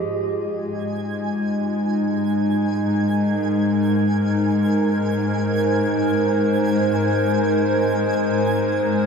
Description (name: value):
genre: ambient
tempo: free time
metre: none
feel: none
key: unclear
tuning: A4 = 438 Hz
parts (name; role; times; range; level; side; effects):
- warbly tape-like pad; sustained chords; 0.0-9.1 s; Ab3 to Eb5; -19 LUFS; equal; chorus, built-in reverb, shimmer reverb
- rich symphonic cello section; bass; 0.0-9.1 s; Ab2; -27 LUFS; equal; none
- twinkling granular texture; texture; 0.8-9.1 s; Ab5; -29 LUFS; right 3 dB; built-in reverb, analog chorus, shimmer reverb
room: wet huge ambient reverb, RT60 7.7 s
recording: dreamy mix soaked in reverb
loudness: -18 LUFS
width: side -6 dB against mid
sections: 0.0-9.1 A section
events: none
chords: 0.1 Ab